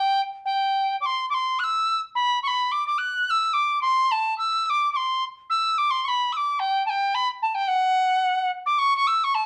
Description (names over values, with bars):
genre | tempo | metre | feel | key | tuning
celtic folk | 216 BPM | 4/4 | swing 56% on 8ths | D mixolydian | A4 = 440 Hz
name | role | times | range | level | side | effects
bright reedy wooden whistle | solo | 0.0-9.5 s | F#5 to F#6 | -23 LUFS | equal | none
room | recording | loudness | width
moderate studio reverb, RT60 0.6 s | worn, warbling old tape, cassette tape, warbly pitch drift | -23 LUFS | mono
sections
0.0-8.8 A section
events
none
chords
none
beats
0.15 0.43 0.71 | 0.99 1.27 1.54 1.82 | 2.10 2.38 2.66 2.94 | 3.22 3.50 3.77 4.05 | 4.33 4.61 4.89 5.17 | 5.45 5.72 6.00 6.28 | 6.56 6.83 7.11 7.39 | 7.67 7.95 8.22 8.50 | 8.78 9.05 9.33